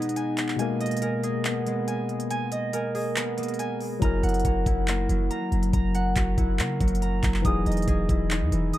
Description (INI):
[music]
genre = hip hop, trap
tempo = 140 BPM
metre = 4/4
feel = half-time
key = unclear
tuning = A4 = 438 Hz
[part]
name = overdriven tine electric piano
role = accompaniment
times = 0.0-8.8 s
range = B2 to A#4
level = -30 LUFS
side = left 1 dB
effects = auto-pan, dub echo
[part]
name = concert harp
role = arpeggios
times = 0.0-8.8 s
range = E3 to D#6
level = -28 LUFS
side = equal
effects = dub echo
[part]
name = trap drum kit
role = drums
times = 0.0-8.8 s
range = handclaps, hi-hat, kick drum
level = -28 LUFS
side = equal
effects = none
[part]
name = clean 808-style bass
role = bass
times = 4.0-8.7 s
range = E1 to C#3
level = -26 LUFS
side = equal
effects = none
[sound]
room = little or no reverb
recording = echo-heavy mix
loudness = -23 LUFS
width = side -14 dB against mid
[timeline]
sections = 0.0-8.8 A section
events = break 0.0-4.0; kick muted 3.2-4.0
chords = 0.0 B6; 0.6 G#madd9; 4.0 F#7; 7.4 Emaj7